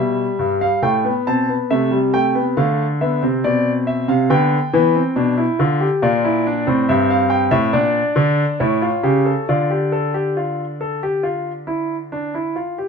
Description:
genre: classical, baroque-style 3-part fugue for grand piano.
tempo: 69 BPM.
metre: 4/4.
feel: straight.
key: D minor from 6.0 s.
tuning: A4 = 440 Hz.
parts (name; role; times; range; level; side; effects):
clear concert grand piano; solo; 0.0-12.9 s; G2 to A5; -16 LUFS; equal; none.
room: moderate stone room reverb, RT60 1.1 s.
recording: minimal, uncompressed stereo recording.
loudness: -16 LUFS.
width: side -5 dB against mid.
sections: 0.0-12.9 A section.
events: none.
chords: 0.0 Em; 0.8 Am7; 2.6 Dm; 4.3 G/D; 6.0 Gm; 7.7 Bb; 8.6 A7; 9.5 Dm.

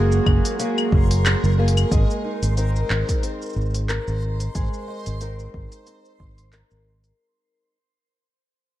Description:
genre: folktronica.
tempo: 91 BPM.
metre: 4/4.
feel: swing 56% on 16ths.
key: Ab mixolydian.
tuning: A4 = 440 Hz.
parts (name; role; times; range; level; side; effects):
mellow clarinet; melody; 0.0-1.6 s; Ab4; -29 LUFS; right 3 dB; tape echo.
warbly tape-like pad; sustained chords; 0.0-1.9 s; Ab3 to Gb4; -30 LUFS; right 5 dB; chorus, built-in reverb.
fingerpicked twelve-string acoustic guitar; arpeggios; 0.0-7.8 s; Gb3 to Bb4; -27 LUFS; left 2 dB; low-pass filter, tape echo.
fingered electric bass; bass; 0.0-7.1 s; Gb1 to Ab1; -20 LUFS; equal; none.
backwards swelling texture; texture; 0.0-7.2 s; Bb4 to C6; -35 LUFS; right 1 dB; built-in reverb.
organic electronic drum kit; drums; 0.1-7.2 s; claves, handclaps, hi-hat, shaker; -27 LUFS; left 1 dB; none.
electronic kick drum; drums; 0.3-6.3 s; none; -21 LUFS; equal; none.
room: little or no reverb.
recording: dark, warm production.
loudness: -19 LUFS.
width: side -14 dB against mid.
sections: 0.0-1.9 A section; 1.9-7.2 B section.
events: fade-out 1.9-7.2; filter sweep on twelve-string acoustic guitar 1.9-7.2.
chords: 0.0 Gbadd9; 1.9 Abadd9.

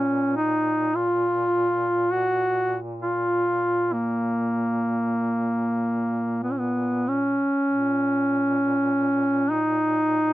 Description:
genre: caucasian folk, Caucasian lament.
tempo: 46-52 BPM.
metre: 4/4.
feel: rubato.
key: Bb phrygian.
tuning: A4 = 439 Hz.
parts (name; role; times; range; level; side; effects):
mellow duduk; melody; 0.0-10.3 s; Bb3 to Gb4; -21 LUFS; equal; none.
mellow duduk; drone; 0.0-10.3 s; Bb2; -33 LUFS; equal; none.
room: light reverb.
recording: dry, close 1970s-style studio recording.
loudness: -21 LUFS.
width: side -16 dB against mid.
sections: 0.0-7.7 A section; 7.7-10.3 B section.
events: none.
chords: none.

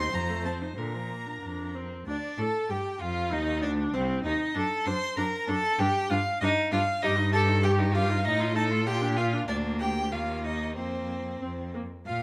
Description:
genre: quick classical-period movement for string quartet.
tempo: 91-98 BPM.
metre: 2/4.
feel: straight.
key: G minor.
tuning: A4 = 440 Hz.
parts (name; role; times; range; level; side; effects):
rich violin; melody; 0.0-12.2 s; C5 to C6; -35 LUFS; equal; none.
rich violin; second line; 0.0-12.2 s; C4 to C5; -34 LUFS; equal; none.
rich viola; accompaniment; 0.0-11.8 s; D3 to A4; -35 LUFS; equal; none.
clear cello; bass; 0.0-12.2 s; C2 to Bb2; -33 LUFS; equal; none.
room: moderate recital hall reverb, RT60 1.4 s.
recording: close, detailed microphones.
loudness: -28 LUFS.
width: mono.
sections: 0.0-2.1 A section; 2.1-12.1 B section.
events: none.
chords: 0.1 F7; 0.8 Bb; 2.1 G5; 3.3 Cmadd9; 4.6 D/F#; 5.8 G5; 7.0 Eb/G; 8.3 F7/A; 8.9 Bb; 9.5 Bb/D; 10.1 Ebsus2; 10.8 Fsus4.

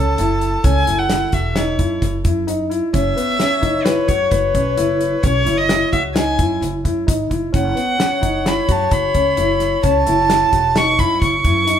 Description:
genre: progressive instrumental, band music in an uneven meter.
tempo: 131 BPM.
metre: 5/4.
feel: straight.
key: F# dorian.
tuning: A4 = 444 Hz.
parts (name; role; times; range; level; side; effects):
warm violin; melody; 0.0-11.8 s; B4 to C#6; -19 LUFS; right 2 dB; none.
mellow flugelhorn; second line; 0.0-11.8 s; A4 to C#5; -23 LUFS; left 4 dB; none.
warm grand piano; arpeggios; 0.0-11.8 s; B3 to F#4; -21 LUFS; left 2 dB; none.
upright bass; bass; 0.0-11.8 s; E1 to F#2; -22 LUFS; right 1 dB; none.
damped 70s drum kit; drums; 0.2-11.8 s; hi-hat, kick drum, snare drum; -21 LUFS; equal; none.
room: light reverb.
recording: band playing live in one room.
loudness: -15 LUFS.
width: side -9 dB against mid.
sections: 0.0-11.8 A section.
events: none.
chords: 0.0 F#5; 2.9 E5/F#; 7.5 F#m7.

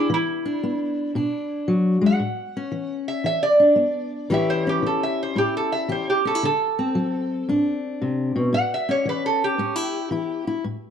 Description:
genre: acoustic country blues, solo or duo.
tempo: 114 BPM.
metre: 4/4.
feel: swing 67% on 8ths.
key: A mixolydian.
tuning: A4 = 440 Hz.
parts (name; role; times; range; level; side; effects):
lap resonator guitar; melody; 0.0-10.5 s; E4 to F#5; -22 LUFS; right 2 dB; plate reverb.
fingerpicked steel-string acoustic guitar; accompaniment; 0.0-10.9 s; A2 to G4; -23 LUFS; left 2 dB; none.
room: moderate studio reverb, RT60 0.9 s.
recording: dark, warm production.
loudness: -20 LUFS.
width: side -8 dB against mid.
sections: 0.0-4.3 A section; 4.3-10.9 B section.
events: resonator guitar played with a steel bar solo 4.3-10.9.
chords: 0.0 E7(no3); 2.2 A; 3.3 E5; 4.3 A7; 6.4 D7; 8.5 A7.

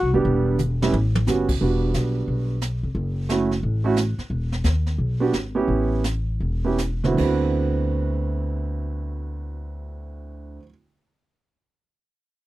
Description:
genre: jazz, small-group swing and bop.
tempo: 151-178 BPM.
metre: 4/4.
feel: swing 64% on 8ths.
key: D mixolydian.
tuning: A4 = 436 Hz.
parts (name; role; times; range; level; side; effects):
upright bass; bass; 0.0-10.6 s; E1 to Eb2; -24 LUFS; left 1 dB; none.
warm baby grand piano; accompaniment; 0.1-10.7 s; D2 to G4; -23 LUFS; right 4 dB; none.
jazz brush drum kit; drums; 0.3-7.5 s; brushed snare drum, crash cymbal, hi-hat, kick drum, snare drum, toms; -29 LUFS; right 1 dB; none.
room: little or no reverb.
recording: dry, close 1970s-style studio recording.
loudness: -20 LUFS.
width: side -16 dB against mid.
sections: 0.0-1.6 A section; 1.6-7.2 B section; 7.2-10.3 C section.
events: drum fill 0.6-1.3; slowing down 4.3-7.2.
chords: 0.3 Em7; 0.9 A9; 1.6 Em7; 3.0 F#m7; 4.3 Em; 5.7 A7; 7.2 D13.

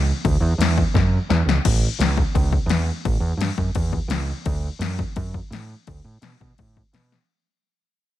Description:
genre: garage rock duo or trio.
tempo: 170 BPM.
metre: 4/4.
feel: straight.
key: A mixolydian.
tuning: A4 = 440 Hz.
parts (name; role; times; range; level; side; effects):
growling fingered electric bass; bass; 0.0-7.2 s; A1 to B2; -21 LUFS; right 1 dB; overdrive.
punchy analog drum machine; drums; 0.2-7.2 s; crash cymbal, kick drum, snare drum; -22 LUFS; left 2 dB; overdrive.
room: light reverb, digital ambience.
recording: 1960s-style stereo.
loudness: -19 LUFS.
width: side -13 dB against mid.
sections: 0.0-1.6 A section; 1.6-7.3 B section.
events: drum fill 0.9-1.6, 7.1; fade-out 1.6-7.3.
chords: none.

